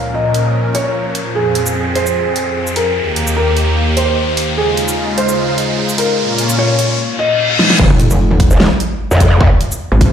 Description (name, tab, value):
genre	heavy wobble dubstep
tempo	149 BPM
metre	4/4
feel	swing 54% on 16ths, half-time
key	F minor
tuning	A4 = 440 Hz
part	felt-muted upright piano	melody	0.0-7.7 s	Ab4 to Eb5	-18 LUFS	equal	ping-pong delay
part	lush unison pad	sustained chords	0.0-10.1 s	Eb2 to Bb4	-18 LUFS	equal	chorus, sidechain pumping
part	riser, reverse cymbal and sub drop	sound effects	0.0-9.4 s	none	-19 LUFS	equal	none
part	dubstep drum kit	drums	0.3-10.1 s	crash cymbal, hi-hat, shaker, snare drum	-18 LUFS	right 1 dB	overdrive
part	growl bass	bass	7.8-9.5 s	F1 to F2	-10 LUFS	equal	chorus, overdrive
part	electronic kick drum	drums	7.8-10.1 s	none	-12 LUFS	equal	none
part	pulsing pluck wobble bass	bass	7.9-10.1 s	F1 to Ab1	-11 LUFS	equal	chorus, overdrive
room	light reverb, digital ambience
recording	played on a big sound system in a bare room, large studio reverb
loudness	-11 LUFS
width	side -8 dB against mid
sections	0.0-7.8 A section; 7.8-10.1 B section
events	build-up 0.0-7.8; riser 0.0-7.0; reverse cymbal 7.0-7.8; drum fill 7.6; drop 7.8-10.1; impact 7.8-9.4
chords	0.0 Bbm; 1.4 Fm; 3.0 Eb; 4.6 Dbadd9; 6.2 Bbm; 7.8 F5